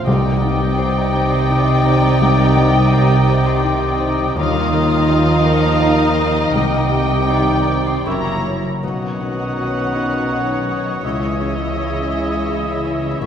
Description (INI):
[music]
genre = cinematic, emotional film score for orchestra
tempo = 82 BPM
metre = 3/4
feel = rubato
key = C minor, C# minor from 8.8 s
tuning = A4 = 440 Hz
[part]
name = muted studio violin section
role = melody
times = 0.0-13.3 s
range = D#5 to A#5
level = -24 LUFS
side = left 2 dB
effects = none
[part]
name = bright oboe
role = second line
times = 0.0-13.3 s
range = Eb5 to E5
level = -28 LUFS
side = right 2 dB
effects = none
[part]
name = hollow concert flute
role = second line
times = 0.0-13.3 s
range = C#6 to Eb6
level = -26 LUFS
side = left 2 dB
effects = none
[part]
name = muted chamber violin section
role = second line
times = 0.0-13.3 s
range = C#5 to Eb5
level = -28 LUFS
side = left 3 dB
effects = none
[part]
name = felt-muted upright piano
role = accompaniment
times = 0.0-13.3 s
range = A1 to F5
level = -23 LUFS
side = left 1 dB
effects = none
[part]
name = muted symphonic viola section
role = accompaniment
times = 0.0-13.3 s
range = Eb4 to E4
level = -27 LUFS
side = right 2 dB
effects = none
[part]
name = concert harp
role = arpeggios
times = 0.0-13.3 s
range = F#2 to C#6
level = -27 LUFS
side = left 3 dB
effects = none
[part]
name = muted studio cello section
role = bass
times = 0.0-13.3 s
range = F#2 to Eb3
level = -21 LUFS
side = right 2 dB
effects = none
[part]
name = muted symphonic double bass section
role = bass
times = 0.0-13.3 s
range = F#1 to Eb2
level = -22 LUFS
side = right 2 dB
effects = none
[part]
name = mellow clarinet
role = second line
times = 0.1-13.3 s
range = F4 to B4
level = -27 LUFS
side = left 1 dB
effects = none
[part]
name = mellow French horn section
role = sustained chords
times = 0.1-13.3 s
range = D#3 to E4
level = -24 LUFS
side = left 3 dB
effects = none
[part]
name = timpani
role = percussion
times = 0.1-1.1 s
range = C3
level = -26 LUFS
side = equal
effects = none
[sound]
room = wet concert hall reverb, RT60 2.5 s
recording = none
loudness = -14 LUFS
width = side -8 dB against mid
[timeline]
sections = 0.0-8.8 A section; 8.8-13.3 A section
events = none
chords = 0.1 Cmadd9; 4.4 Ebsus2; 6.6 Cmadd9; 8.1 F#7; 8.8 Badd9; 11.0 C#madd9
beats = | 0.07 0.78 1.50 | 2.21 2.93 3.65 | 4.37 5.10 5.83 | 6.56 7.30 8.06 | 8.82 9.57 10.30 | 11.03 11.76 12.49 | 13.21